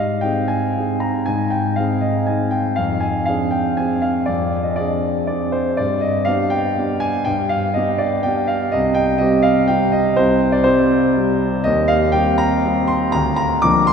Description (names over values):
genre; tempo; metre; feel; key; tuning
classical, piano waltz; 121 BPM; 3/4; uneven beats, rubato; C minor; A4 = 439 Hz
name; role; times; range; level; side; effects
warm concert grand piano; solo; 0.0-13.9 s; C2 to D6; -16 LUFS; equal; none
room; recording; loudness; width
wet cathedral reverb, RT60 6.3 s; heard from further back in the room; -16 LUFS; side -6 dB against mid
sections
0.0-13.9 A section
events
none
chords
0.0 Ab; 2.8 Dm7b5/F; 5.8 G; 8.7 C5; 11.7 Cm/Eb; 13.1 Bb/D